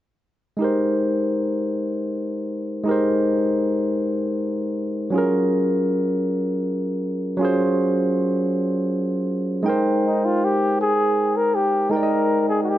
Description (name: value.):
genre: R&B.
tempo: 53 BPM (dotted quarters).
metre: 6/8.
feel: straight.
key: Ab major.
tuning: A4 = 443 Hz.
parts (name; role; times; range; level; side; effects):
barky tine electric piano; accompaniment; 0.6-12.8 s; Gb3 to G5; -20 LUFS; equal; none.
breathy flugelhorn; melody; 10.1-12.8 s; Eb4 to Bb4; -20 LUFS; left 1 dB; none.
room: wet echo chamber reverb, RT60 2.2 s.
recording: nothing above 7.8 kHz.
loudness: -19 LUFS.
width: side -13 dB against mid.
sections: 0.6-9.7 A section; 9.7-12.8 B section.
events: none.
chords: 0.6 Abmaj9; 5.1 Gbmaj9; 9.7 Abmaj9.